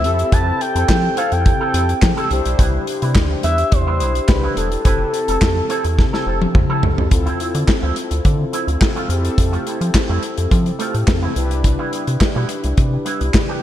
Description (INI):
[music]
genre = early-eighties boogie funk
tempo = 106 BPM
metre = 4/4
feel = straight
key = unclear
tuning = A4 = 440 Hz
[part]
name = expressive synth lead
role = melody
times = 0.0-6.6 s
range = A4 to A5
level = -22 LUFS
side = equal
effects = chorus, slapback echo
[part]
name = mellow synth brass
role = accompaniment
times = 0.0-13.6 s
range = C4 to C5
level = -24 LUFS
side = left 3 dB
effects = chorus, slapback echo
[part]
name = electric guitar with an envelope filter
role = riff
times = 0.0-13.6 s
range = F3 to B4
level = -26 LUFS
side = right 3 dB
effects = analog chorus, slapback echo
[part]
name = rubbery square bass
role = bass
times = 0.0-13.3 s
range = E1 to F3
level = -19 LUFS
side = equal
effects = none
[part]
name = modern studio drum kit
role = drums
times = 0.0-13.5 s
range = handclaps, hi-hat, kick drum, snare drum, toms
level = -18 LUFS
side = equal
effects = none
[sound]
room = light reverb, studio reverb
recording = none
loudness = -15 LUFS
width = side -12 dB against mid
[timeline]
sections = 0.0-7.1 A section; 7.1-13.6 B section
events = drum fill 6.0-7.1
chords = 0.0 Fmaj7; 2.3 Cmaj7; 4.9 Fmaj7; 7.1 Dm9; 9.1 Fmaj7; 11.4 Cmaj7